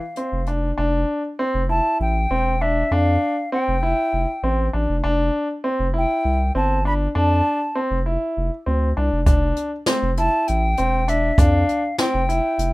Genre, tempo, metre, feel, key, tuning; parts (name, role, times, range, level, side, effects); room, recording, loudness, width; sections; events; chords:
progressive instrumental, band music in an uneven meter; 198 BPM (eighths); 7/8; straight; F major; A4 = 440 Hz
concert flute; melody; 0.0-12.7 s; E5 to B5; -23 LUFS; equal
bright grand piano; arpeggios; 0.2-12.7 s; C4 to E4; -22 LUFS; equal
jazz brush drum kit; drums; 0.2-0.6, 9.3-12.7 s; hi-hat, kick drum, snare drum; -19 LUFS; equal
saturated sub bass; bass; 0.3-12.7 s; E1 to F2; -21 LUFS; equal
light reverb; rough home demo mix; -18 LUFS; side -20 dB against mid
0.8-12.7 A section
0.0 F5; 0.8 Fmaj9; 5.0 Am/F; 9.3 Fmaj7sus2